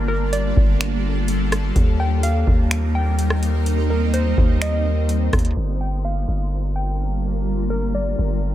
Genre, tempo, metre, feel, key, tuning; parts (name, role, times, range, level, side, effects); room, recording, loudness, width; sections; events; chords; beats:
hip hop, atmospheric cloud-rap; 126 BPM; 4/4; half-time; G minor; A4 = 436 Hz
shimmering ambient pad; sustained chords; 0.0-8.5 s; G3 to C5; -25 LUFS; equal; chorus, built-in reverb, phaser, sidechain pumping
long sustained 808-style bass; bass; 0.0-8.5 s; G1 to Eb2; -20 LUFS; equal
warbly dusty pluck; melody; 0.1-8.5 s; Bb4 to G5; -28 LUFS; equal; chorus, low-pass filter, tape echo
booming analog drum machine; drums; 0.3-5.6 s; finger snaps, hi-hat, kick drum, rim click; -18 LUFS; equal
digital ambience; low-pass filter; -18 LUFS; side -13 dB against mid
0.0-5.6 A section; 5.6-8.5 B section
0.0 Gm7; 1.8 Eb6; 5.6 Gm7
0.33 0.81 1.28 | 1.76 2.23 2.71 3.19 | 3.66 4.14 4.62 5.09 | 5.57 6.04 6.52 7.00 | 7.47 7.95 8.42